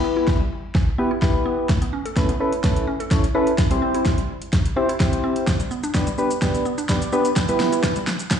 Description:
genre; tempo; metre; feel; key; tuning
dance-pop; 127 BPM; 4/4; straight; E minor; A4 = 440 Hz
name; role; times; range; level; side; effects
soft electric-piano-like synth keys; accompaniment; 0.0-7.9 s; B3 to D5; -22 LUFS; equal; chorus, sidechain pumping, slapback echo
mallet-like synth pluck; arpeggios; 0.0-8.4 s; B2 to A4; -29 LUFS; right 1 dB; chorus, sidechain pumping, ping-pong delay, slapback echo
deep house drum kit; drums; 0.3-8.4 s; hi-hat, kick drum, shaker, snare drum; -21 LUFS; equal; none
room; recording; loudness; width
light reverb, digital ambience; live gig heard through the venue's PA, club reverb, high-pass filter, nothing above 10.6 kHz; -18 LUFS; side -8 dB against mid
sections
0.0-8.4 A section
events
build-up 0.0-8.4; drum fill 0.0-8.4; filter sweep 0.0-8.4; synth keys fill 6.7-7.4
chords
0.0 Em; 1.7 Aadd9; 3.6 C; 5.5 G/B; 7.4 Em

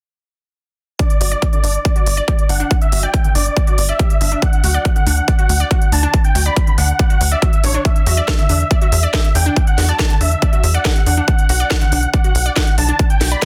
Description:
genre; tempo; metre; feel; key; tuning
uplifting trance; 140 BPM; 4/4; straight; unclear; A4 = 440 Hz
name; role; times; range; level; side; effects
big supersaw lead; melody; 1.0-13.4 s; C#5 to B5; -24 LUFS; equal; sidechain pumping, low-pass filter, dub echo
unison pluck; arpeggios; 1.0-13.3 s; D3 to D5; -28 LUFS; equal; sidechain pumping, dub echo
electronic kick drum; drums; 1.0-13.4 s; none; -17 LUFS; equal; overdrive
techno drum kit; drums; 1.0-13.4 s; hi-hat, snare drum; -24 LUFS; equal; overdrive
tight sequencer bass; bass; 1.2-13.4 s; G1 to E2; -19 LUFS; equal; sidechain pumping
room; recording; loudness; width
little or no reverb; dense, heavily limited modern master; -15 LUFS; mono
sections
1.0-13.4 A section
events
none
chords
1.0 G5; 4.4 D; 7.9 Esus2; 11.3 Bm

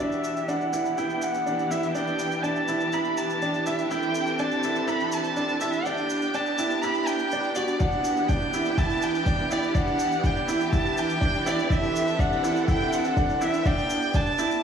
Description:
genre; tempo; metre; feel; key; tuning
piano and strings electronica; 123 BPM; 4/4; straight; E minor; A4 = 440 Hz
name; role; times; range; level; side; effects
warm violin; melody; 0.0-14.6 s; D5 to B5; -27 LUFS; equal; low-pass filter, tape echo
rich studio string section; sustained chords; 0.0-14.6 s; E3 to A4; -30 LUFS; left 1 dB; sidechain pumping, low-pass filter
clear concert grand piano; riff; 0.0-14.5 s; D4 to F#4; -28 LUFS; right 3 dB; tape echo
round analog bass; bass; 0.0-14.6 s; E1 to G1; -53 LUFS; left 1 dB; none
shaker; drums; 0.1-14.6 s; none; -41 LUFS; right 2 dB; high-pass filter on perc, small room ambience
electronic kick drum; drums; 7.8-14.2 s; none; -26 LUFS; equal; overdrive, small room ambience
room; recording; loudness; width
wet echo chamber reverb, RT60 2.5 s; studio reverb; -23 LUFS; side -7 dB against mid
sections
0.0-14.6 A section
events
build-up 0.0-14.6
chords
0.0 Em7; 3.9 C6/E; 5.9 G; 7.8 Em7; 11.7 C6/E; 13.7 G

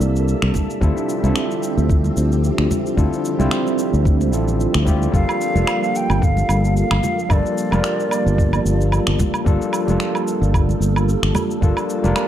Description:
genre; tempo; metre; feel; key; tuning
sunset chillout; 111 BPM; 4/4; swing 56% on 16ths; G dorian; A4 = 441 Hz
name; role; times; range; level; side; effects
overdriven tine electric piano; accompaniment; 0.0-12.3 s; G3 to C5; -23 LUFS; moving between left 4 dB and right 3 dB; auto-pan, ping-pong delay
soft string machine; sustained chords; 0.0-12.3 s; C3 to E5; -24 LUFS; right 1 dB; phaser, ensemble chorus
fretless electric bass; bass; 0.0-12.1 s; F1 to D2; -18 LUFS; equal; none
electronic shaker, finger snaps and woodblock; drums; 0.0-12.3 s; none; -26 LUFS; right 2 dB; none
electronic kick drum; drums; 0.5-11.7 s; none; -18 LUFS; equal; none
congas; percussion; 0.5-12.1 s; none; -27 LUFS; right 2 dB; none
mellow hollow silver concert flute; melody; 5.1-9.2 s; D5 to G5; -24 LUFS; equal; digital delay
room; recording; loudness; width
light reverb, digital ambience; dark, warm production; -16 LUFS; side -11 dB against mid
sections
0.0-12.3 A section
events
none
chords
0.0 C13; 0.8 Dm11; 5.1 Gm9

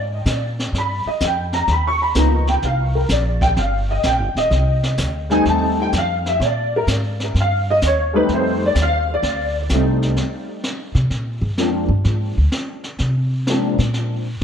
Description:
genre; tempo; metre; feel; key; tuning
jazz piano trio; 127 BPM; 4/4; swing 68% on 8ths; unclear; A4 = 439 Hz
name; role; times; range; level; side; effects
upright bass; bass; 0.0-14.4 s; Eb1 to C3; -20 LUFS; equal; none
jazz brush drum kit; drums; 0.3-14.4 s; brushed snare drum, hi-hat, kick drum, snare drum; -26 LUFS; equal; none
warm grand piano; melody; 0.8-13.8 s; F3 to Db6; -19 LUFS; equal; ensemble chorus, tape echo
room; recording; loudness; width
light reverb, small room ambience; none; -16 LUFS; side -8 dB against mid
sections
0.0-10.2 A section; 10.2-14.4 A section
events
grand piano solo 0.0-10.2; upright bass solo 10.2-14.4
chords
0.0 N.C.; 0.7 G7alt; 2.6 C7(no3); 4.5 F9; 6.4 Bb7; 7.3 Eb9; 8.3 F9; 10.2 Bb7sus2

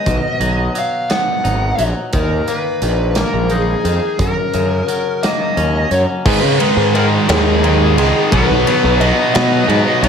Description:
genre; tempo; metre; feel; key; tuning
quiet-loud alternative rock; 58 BPM (dotted quarters); 6/8; straight; G# minor; A4 = 440 Hz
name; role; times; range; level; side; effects
bluesy overdriven lead guitar; melody; 0.0-10.1 s; G#4 to F#5; -18 LUFS; left 1 dB; distortion
twangy electric guitar; arpeggios; 0.0-6.3 s; F#2 to D#4; -23 LUFS; left 3 dB; none
fuzz picked electric bass; bass; 0.1-10.1 s; G#1 to C#3; -17 LUFS; equal; overdrive
big rock drum kit; drums; 0.1-10.1 s; crash cymbal, hi-hat, kick drum, ride cymbal, snare drum; -21 LUFS; right 1 dB; none
distorted electric guitar; riff; 6.3-10.1 s; G#2 to B3; -15 LUFS; right 1 dB; overdrive
room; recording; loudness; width
light reverb; none; -13 LUFS; side -7 dB against mid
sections
0.0-6.3 A section; 6.3-10.1 B section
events
none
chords
0.1 B; 2.1 D#5; 4.2 F#; 6.3 G#m; 8.3 B

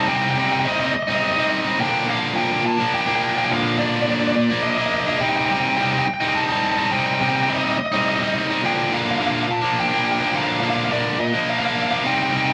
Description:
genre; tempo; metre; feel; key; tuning
rock; 106 BPM; 3/4; straight; unclear; A4 = 444 Hz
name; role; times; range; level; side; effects
dark smooth lead guitar; melody; 0.0-12.5 s; D5 to A5; -24 LUFS; equal; overdrive
distorted electric guitar; riff; 0.0-12.5 s; Bb2 to Eb4; -22 LUFS; equal; overdrive
room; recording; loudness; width
wet studio reverb, RT60 0.9 s; band playing live in one room; -20 LUFS; mono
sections
0.0-12.5 A section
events
none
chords
0.0 Cm; 1.8 Bb; 5.2 Cm; 8.6 Bb

